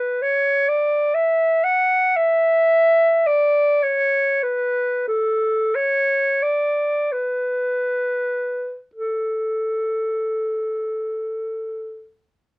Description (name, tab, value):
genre	classical, free, expressive piece for unaccompanied clarinet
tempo	27-66 BPM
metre	4/4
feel	rubato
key	A major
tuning	A4 = 440 Hz
part	clear clarinet	solo	0.0-12.1 s	A4 to F#5	-18 LUFS	equal	none
room	light reverb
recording	worn, warbling old tape, cassette tape, warbly pitch drift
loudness	-17 LUFS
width	side -24 dB against mid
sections	0.0-8.9 A section; 8.9-12.6 B section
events	slowing down 0.0-8.9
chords	none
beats	0.21 1.15 2.16 | 3.26 4.42 5.74 7.12 | 8.95 10.54